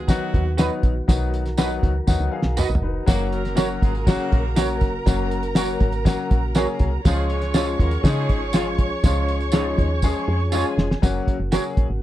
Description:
uptempo 1960s-style soul; 121 BPM; 4/4; straight; A4 = 443 Hz
clear saxophone section; second line; 0.0-8.5 s; C#3 to C#5; -31 LUFS; right 2 dB
tonewheel organ; sustained chords; 0.0-12.0 s; C#3 to A#4; -31 LUFS; right 1 dB; slow rotary speaker
woody FM bass; bass; 0.0-12.0 s; E#1 to C#3; -24 LUFS; equal
bright upright piano; accompaniment; 0.1-11.9 s; E#3 to E#5; -27 LUFS; left 7 dB
cloth-damped thuddy drum kit; drums; 0.1-11.9 s; hi-hat, kick drum, snare drum, toms; -19 LUFS; equal
tambourine; percussion; 0.1-11.6 s; -35 LUFS; right 6 dB
electric guitar through a small old amp; stabs; 0.6-11.6 s; E#4 to D#5; -25 LUFS; right 7 dB; tube saturation, ensemble chorus
warm studio violin section; second line; 3.1-11.0 s; G#4 to C#6; -30 LUFS; right 2 dB
little or no reverb; dark, warm production; -18 LUFS; side -14 dB against mid
0.0-11.0 A section
drum fill 2.1-3.1, 10.0-11.0
0.0 B; 3.1 F#; 7.1 C#; 11.0 F#

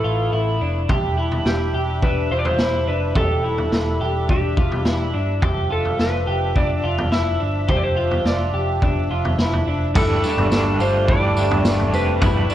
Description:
dream pop; 106 BPM; 4/4; straight; G mixolydian; A4 = 440 Hz
electric slide guitar; melody; 0.0-12.5 s; G4 to E5; -24 LUFS; equal; ping-pong delay
accordion; sustained chords; 0.0-12.5 s; F3 to E5; -28 LUFS; right 1 dB; light tremolo tuning
electric guitar through a small old amp; arpeggios; 0.0-12.5 s; C4 to G4; -25 LUFS; equal; wide subtle chorus, ping-pong delay
vintage muted picked electric bass; bass; 0.0-12.5 s; E1 to A1; -23 LUFS; equal
raw garage drum kit; drums; 0.9-12.5 s; crash cymbal, kick drum, snare drum, tambourine, toms; -22 LUFS; equal
overdriven semi-hollow guitar; accompaniment; 9.9-12.5 s; G3 to G4; -27 LUFS; right 3 dB; tremolo, wide subtle chorus
light reverb, small room ambience; worn, warbling old tape, cassette tape, warbly pitch drift; -17 LUFS; side -12 dB against mid
0.0-10.0 A section; 10.0-12.5 B section
0.0 Asus2; 0.9 Em7; 5.4 Dmadd9/F; 10.0 Gsus2

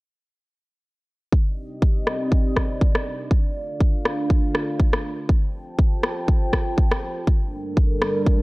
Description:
afro house; 121 BPM; 4/4; swing 55% on 16ths; C dorian; A4 = 440 Hz
dark analog pad; sustained chords; 1.3-8.4 s; G3 to A5; -28 LUFS; right 1 dB; chorus, phaser, sidechain pumping
electronic kick drum; drums; 1.3-8.4 s; -19 LUFS; equal
electronic rim click; drums; 2.1-8.1 s; -25 LUFS; equal; low-pass filter on snare
little or no reverb; dry, gritty hardware recording; -19 LUFS; side -23 dB against mid
1.3-8.4 A section
1.3 Cm; 3.3 Dm; 5.3 F; 7.3 Gm

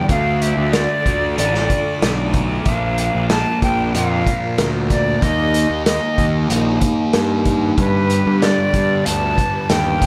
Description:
psychedelic rock; 94 BPM; 4/4; straight; A4 = 438 Hz
breathy bright concert flute; melody; 0.0-10.1 s; B4 to A5; -23 LUFS; equal; analog delay
phased string machine; sustained chords; 0.0-10.1 s; Bb3 to D5; -32 LUFS; equal
fuzz guitar; riff; 0.0-10.1 s; G2 to Eb4; -23 LUFS; equal; distortion, phaser, analog delay
fuzz picked electric bass; bass; 0.1-10.1 s; A1 to G2; -23 LUFS; equal; overdrive
vintage drum kit; drums; 0.1-10.1 s; hi-hat, kick drum, snare drum; -23 LUFS; equal
light reverb, small room ambience; echo-heavy mix; -17 LUFS; mono
0.0-10.1 A section
0.1 Dm; 2.7 Bb; 5.2 Eb; 7.8 G

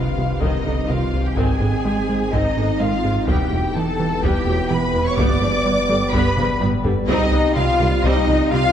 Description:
cinematic, hybrid orchestral and electronic film score; 126 BPM; 4/4; straight; C harmonic minor; A4 = 439 Hz
rich symphonic violin section; melody; 0.0-8.7 s; Eb5 to D6; -30 LUFS; left 2 dB
warm symphonic violin section; second line; 0.0-8.7 s; Eb5 to D6; -25 LUFS; left 4 dB
warm symphonic viola section; accompaniment; 0.0-8.6 s; C3 to C4; -26 LUFS; equal
mellow French horn section; sustained chords; 0.0-8.7 s; Eb3 to C4; -28 LUFS; left 2 dB
metallic inharmonic drone; sustained chords; 0.0-8.7 s; E3 to E5; -27 LUFS; equal; chorus, built-in reverb
rubbery square bass; riff; 0.0-8.7 s; C2 to Ab3; -24 LUFS; right 2 dB
dark symphonic cello section; bass; 0.0-8.7 s; Eb4 to D5; -24 LUFS; right 2 dB
dark symphonic double bass section; bass; 0.0-8.6 s; E1 to C2; -28 LUFS; right 2 dB
sub bass with octave; bass; 0.0-8.7 s; E1 to C2; -28 LUFS; left 1 dB
impact; sound effects; 0.0-1.4 s; -33 LUFS; left 1 dB
taiko ensemble; drums; 0.4-8.5 s; -26 LUFS; equal
wet scoring stage reverb, RT60 1.8 s; dark, warm production; -16 LUFS; side -9 dB against mid
0.0-8.7 A section
impact 0.0-1.4; drum fill 6.4-7.1
0.0 Cm; 1.4 Ab; 3.3 Em; 5.2 G; 7.1 Cm

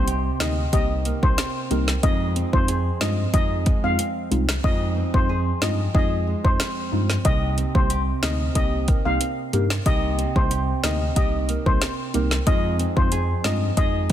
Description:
dancehall; 92 BPM; 4/4; straight; C minor; A4 = 440 Hz
steel pan; melody; 0.0-13.9 s; C5 to F5; -27 LUFS; left 3 dB; digital delay
deep mellow chord stab; accompaniment; 0.0-14.1 s; Ab3 to G4; -29 LUFS; left 1 dB; chorus
nylon-string guitar; arpeggios; 0.0-14.1 s; F2 to Ab4; -30 LUFS; right 4 dB
mellow tine electric piano; bass; 0.0-14.1 s; C2 to G2; -24 LUFS; equal; medium stereo tremolo
afro-pop drum kit; drums; 0.1-14.1 s; hi-hat, kick drum, snare drum; -23 LUFS; equal
little or no reverb; dense, heavily limited modern master; -19 LUFS; side -11 dB against mid
0.0-14.1 A section
hi-hats muted 4.6-7.2
0.0 Cm7; 2.0 Fm7; 7.2 Cm7; 12.5 Fm7

